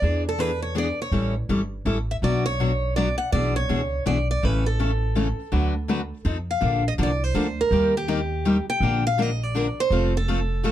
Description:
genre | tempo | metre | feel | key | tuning
acoustic string swing (jazz manouche) | 164 BPM | 3/4 | swing 62% on 8ths | Bb major from 6.6 s | A4 = 440 Hz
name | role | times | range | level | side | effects
picked steel-string acoustic guitar | melody | 0.0-10.7 s | G4 to G5 | -26 LUFS | right 1 dB | none
picked steel-string acoustic guitar | accompaniment | 0.0-10.7 s | B2 to B4 | -25 LUFS | left 3 dB | none
upright bass | bass | 0.0-10.7 s | F1 to F2 | -25 LUFS | right 1 dB | none
room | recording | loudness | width
light reverb | dark, warm production | -21 LUFS | side -12 dB against mid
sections
0.0-6.6 A section; 6.6-10.7 B section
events
none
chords
0.0 E7; 1.1 A7; 2.2 Bm; 3.3 E7/B; 4.4 A; 5.5 D6; 6.3 F7; 6.6 Bbmaj7; 7.7 Eb; 8.8 Bb; 9.9 F

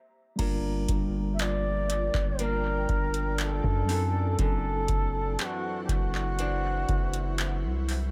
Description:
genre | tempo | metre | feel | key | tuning
contemporary R&B | 60 BPM | 4/4 | straight | G dorian | A4 = 440 Hz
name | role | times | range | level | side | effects
mellow tine electric piano | accompaniment | 0.4-8.1 s | F#3 to Bb4 | -38 LUFS | equal | analog delay
ethereal airy pad | sustained chords | 1.3-8.1 s | E4 to G5 | -44 LUFS | equal | ensemble chorus, built-in reverb, phaser, sidechain pumping
flamenco guitar | arpeggios | 0.4-8.1 s | F#2 to D4 | -41 LUFS | equal | analog delay
long sustained 808-style bass | bass | 0.4-8.1 s | F#1 to F#2 | -32 LUFS | equal | none
booming analog drum machine | drums | 0.4-8.1 s | crash cymbal, handclaps, hi-hat, kick drum | -32 LUFS | equal | analog delay
soft synth bell | texture | 0.4-2.5 s | Bb5 | -49 LUFS | equal | chorus, analog delay
bansuri | melody | 1.3-7.9 s | F#4 to E5 | -34 LUFS | equal | analog delay
room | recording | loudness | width
light reverb | echo-heavy mix | -28 LUFS | mono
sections
0.4-8.1 A section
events
stop 0.0-0.4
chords
0.4 Gm7; 3.9 D9/F#

